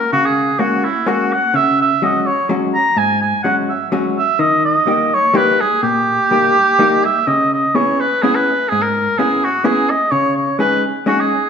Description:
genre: musette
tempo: 126 BPM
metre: 3/4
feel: swing 54% on 8ths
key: unclear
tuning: A4 = 440 Hz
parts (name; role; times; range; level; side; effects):
- warm oboe; melody; 0.0-11.5 s; E4 to A#5; -15 LUFS; right 1 dB; none
- vintage hollow-body jazz guitar; accompaniment; 0.1-11.3 s; G#2 to G#4; -18 LUFS; left 2 dB; none
room: wet recital hall reverb, RT60 1.6 s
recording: minimal, uncompressed stereo recording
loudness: -13 LUFS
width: side -7 dB against mid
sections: 0.0-11.5 A section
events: none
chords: 0.0 F#add9; 1.5 C#sus4; 4.4 D#; 7.3 C#m7; 10.1 C#sus2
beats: | 0.12 0.60 1.07 | 1.55 2.02 2.50 | 2.97 3.44 3.92 | 4.39 4.86 5.33 | 5.81 6.29 6.77 | 7.26 7.74 8.22 | 8.70 9.17 9.65 | 10.12 10.60 11.07

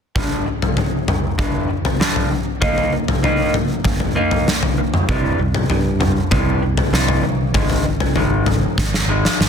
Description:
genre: quiet-loud alternative rock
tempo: 97 BPM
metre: 4/4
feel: straight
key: unclear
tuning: A4 = 435 Hz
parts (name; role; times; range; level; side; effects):
- electric guitar through a small old amp; arpeggios; 0.2-9.5 s; G2 to Eb4; -22 LUFS; equal; none
- huge arena drum kit; drums; 0.2-9.5 s; kick drum, snare drum, toms; -17 LUFS; left 1 dB; none
- picked electric bass; bass; 5.1-9.5 s; Ab1 to G2; -20 LUFS; right 1 dB; none
room: light reverb, studio reverb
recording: dense, heavily limited modern master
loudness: -16 LUFS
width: side -7 dB against mid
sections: 0.2-9.5 A section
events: drum fill 8.8-9.5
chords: 0.2 G5; 2.6 Eb5; 5.1 C; 7.5 Ab5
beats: | 0.15 0.77 1.39 2.00 | 2.62 3.24 3.85 4.47 | 5.08 5.70 6.32 6.93 | 7.55 8.16 8.78 9.40

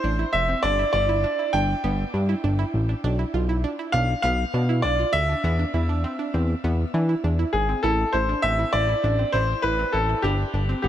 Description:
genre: synth-pop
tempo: 100 BPM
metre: 4/4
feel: straight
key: A minor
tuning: A4 = 440 Hz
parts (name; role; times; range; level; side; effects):
- clear baby grand piano; melody; 0.0-10.9 s; G4 to G5; -24 LUFS; equal; shimmer reverb, tape echo
- analog pluck; arpeggios; 0.0-10.9 s; B3 to F4; -30 LUFS; right 3 dB; chorus, shimmer reverb, tape echo
- fat analog bass; bass; 0.0-10.9 s; F1 to E3; -23 LUFS; equal; none
room: light reverb, studio reverb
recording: none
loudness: -20 LUFS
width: side -11 dB against mid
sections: 0.0-7.8 A section; 7.8-10.9 B section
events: none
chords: 0.0 Am; 0.6 G5; 3.0 Bdim; 5.4 E; 7.8 Am; 10.2 G5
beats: 0.04 | 0.64 1.24 1.84 2.44 | 3.04 3.64 4.24 4.84 | 5.44 6.04 6.64 7.24 | 7.84 8.44 9.04 9.64 | 10.24 10.84

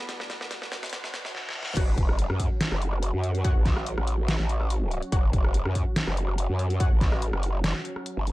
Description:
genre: heavy wobble dubstep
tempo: 143 BPM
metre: 4/4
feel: swing 53% on 16ths, half-time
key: F# phrygian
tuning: A4 = 439 Hz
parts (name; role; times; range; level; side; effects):
- supersaw chords; sustained chords; 0.0-8.3 s; B2 to F#4; -38 LUFS; right 1 dB; sidechain pumping, low-pass filter
- riser and reverse cymbal; sound effects; 0.0-1.8 s; none; -40 LUFS; left 1 dB; none
- granular cloud pad; texture; 0.0-1.3 s; E4 to F#5; -48 LUFS; equal; none
- dubstep drum kit; drums; 0.1-8.3 s; crash cymbal, hi-hat, rim click, snare drum; -31 LUFS; equal; none
- orchestra-hit-like synth stab; stabs; 1.8-6.9 s; F#4 to F#5; -38 LUFS; left 3 dB; built-in reverb, digital delay
- growl bass; bass; 1.8-8.3 s; F#1 to F#2; -26 LUFS; equal; chorus, overdrive
- electronic kick drum; drums; 1.8-7.1 s; none; -24 LUFS; equal; none
room: digital ambience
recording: dark, warm production, high-pass filter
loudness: -24 LUFS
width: side -18 dB against mid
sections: 0.0-1.8 A section; 1.8-8.3 B section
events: build-up 0.0-1.8; drum fill 0.0-1.3, 1.3-1.8; riser 0.0-1.3; reverse cymbal 0.9-1.8; drop 1.8-8.3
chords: 0.1 Bm; 1.8 F#5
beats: | 0.09 0.51 0.93 1.35 | 1.77 2.19 2.61 3.02 | 3.44 3.86 4.28 4.70 | 5.12 5.54 5.96 6.38 | 6.80 7.22 7.64 8.06

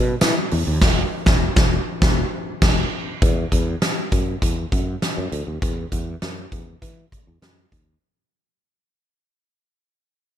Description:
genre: 1980s-style pop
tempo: 100 BPM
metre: 4/4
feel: straight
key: unclear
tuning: A4 = 440 Hz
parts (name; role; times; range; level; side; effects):
- sustaining fretless electric bass; bass; 0.0-7.9 s; E1 to E3; -24 LUFS; equal; lush chorus
- huge arena drum kit; drums; 0.2-7.9 s; crash cymbal, hi-hat, kick drum, snare drum, tambourine; -19 LUFS; equal; gated reverb
room: little or no reverb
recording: none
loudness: -18 LUFS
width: side -10 dB against mid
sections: 0.0-3.2 A section; 3.2-8.0 B section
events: band accent 0.8-3.2; fade-out 3.2-8.0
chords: none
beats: 0.22 | 0.82 1.42 2.02 2.62 | 3.22 3.82 4.42 5.02 | 5.62 6.22 6.82 7.42

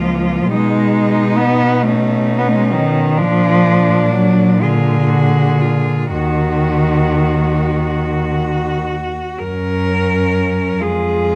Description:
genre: classical, lyrical piece for cello ensemble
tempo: 33-46 BPM (dotted quarters)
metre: 6/8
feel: rubato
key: Eb minor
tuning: A4 = 439 Hz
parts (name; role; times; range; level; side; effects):
- clear cello; melody; 0.0-11.4 s; Db4 to A#4; -24 LUFS; equal; none
- rich cello; second line; 0.0-11.4 s; Bb3 to Ab4; -25 LUFS; equal; none
- dark cello; accompaniment; 0.0-11.4 s; D3 to Cb4; -18 LUFS; equal; none
- rich cello; bass; 0.0-11.4 s; Db2 to Cb3; -22 LUFS; equal; none
room: moderate recital hall reverb, RT60 1.6 s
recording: close, detailed microphones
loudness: -15 LUFS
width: mono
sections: 0.0-9.4 A section; 9.4-11.4 B section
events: none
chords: 0.0 Bbm/Db; 0.5 Abm/Cb; 3.2 Bb; 4.6 Bb7; 6.1 Ebm; 9.4 F#; 10.8 Fm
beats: | 0.51 1.84 | 3.19 4.60 | 6.11 7.83 | 9.39 10.80

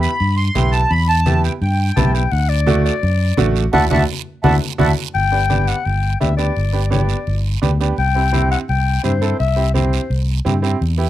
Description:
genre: latin, cumbia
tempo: 170 BPM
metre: 4/4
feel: straight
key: G major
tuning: A4 = 440 Hz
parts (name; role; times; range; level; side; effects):
- accordion; melody; 0.0-4.9 s; E5 to C6; -19 LUFS; right 1 dB; light tremolo tuning
- bright upright piano; accompaniment; 0.0-11.1 s; A3 to A4; -21 LUFS; right 6 dB; none
- fingered electric bass; bass; 0.0-11.1 s; G1 to G2; -17 LUFS; equal; none
- guiro; percussion; 0.0-11.1 s; none; -31 LUFS; right 16 dB; none
- congas; percussion; 0.2-11.0 s; none; -22 LUFS; left 3 dB; none
- growling clarinet; second line; 2.0-10.2 s; C5 to A5; -22 LUFS; left 8 dB; none
room: little or no reverb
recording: dry, close 1970s-style studio recording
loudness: -14 LUFS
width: side -13 dB against mid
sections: 0.0-5.1 A section; 5.1-11.1 B section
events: band accent 3.7-5.1; clarinet solo 5.1-11.1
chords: 0.0 Em; 2.3 Dadd9; 5.1 G; 8.0 C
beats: 0.20 0.56 | 0.91 1.26 1.62 1.97 | 2.32 2.68 3.03 3.38 | 3.73 4.09 4.44 4.79 | 5.15 5.50 5.86 6.21 | 6.56 6.92 7.27 7.63 | 7.98 8.34 8.69 9.04 | 9.40 9.75 10.11 10.46 | 10.82

